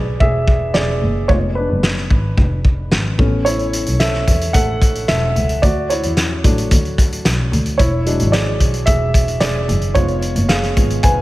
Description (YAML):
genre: piano-driven pop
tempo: 111 BPM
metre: 4/4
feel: straight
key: A major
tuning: A4 = 440 Hz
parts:
  - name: dark upright piano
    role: accompaniment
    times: 0.0-11.2 s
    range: E#3 to G#5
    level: -19 LUFS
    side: right 1 dB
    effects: none
  - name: warm double bass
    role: bass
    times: 0.0-11.2 s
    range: E1 to E2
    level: -19 LUFS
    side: equal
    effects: none
  - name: loose indie drum kit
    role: drums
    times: 0.2-11.2 s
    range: hi-hat, kick drum, snare drum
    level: -17 LUFS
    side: equal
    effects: none
room: light reverb, small room ambience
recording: none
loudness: -14 LUFS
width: side -17 dB against mid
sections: 0.0-11.2 A section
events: upright piano solo 0.0-11.2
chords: 0.0 E7; 1.3 Fdim7; 3.2 Aadd9; 5.6 D; 7.8 E7; 10.0 C#7/E#